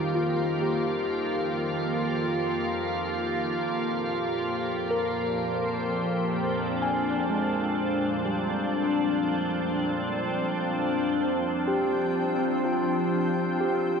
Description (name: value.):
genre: ambient.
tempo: 63 BPM.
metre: 4/4.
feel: straight.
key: unclear.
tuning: A4 = 439 Hz.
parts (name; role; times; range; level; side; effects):
soft additive organ-like pad; sustained chords; 0.0-14.0 s; F2 to G5; -26 LUFS; equal; ensemble chorus, built-in reverb, cassette tape.
tine electric piano; arpeggios; 0.0-14.0 s; G3 to Ab5; -31 LUFS; equal; medium stereo tremolo, cassette tape, tape echo.
wind-like tuned noise texture; texture; 13.3-14.0 s; none; barely audible; none; none.
room: wet spring reverb, RT60 2.5 s.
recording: home recording on cassette.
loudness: -25 LUFS.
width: side -6 dB against mid.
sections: 0.0-11.2 A section; 11.2-14.0 B section.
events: none.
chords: 0.0 Eb/F; 3.5 Bb/F.